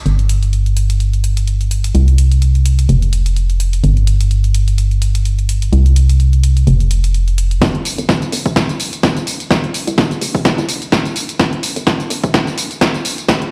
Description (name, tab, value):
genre	piano house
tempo	127 BPM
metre	4/4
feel	swing 56% on 16ths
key	unclear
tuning	A4 = 440 Hz
part	organ-like FM bass	bass	0.1-13.4 s	D1 to C2	-14 LUFS	equal	sidechain pumping, high-pass filter
part	punchy analog drum machine	drums	0.1-13.5 s	hi-hat, snare drum, tambourine	-22 LUFS	equal	overdrive, high-pass filter on hats, high-pass filter on perc, high-pass filter on snare
part	electronic kick drum	drums	7.6-13.4 s	none	-19 LUFS	equal	overdrive, high-pass filter on kick
room	digital ambience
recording	played on a big sound system in a bare room, large studio reverb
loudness	-15 LUFS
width	mono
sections	0.1-7.6 A section; 7.6-13.5 B section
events	build-up 7.6-13.5; drum fill 7.6-13.5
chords	none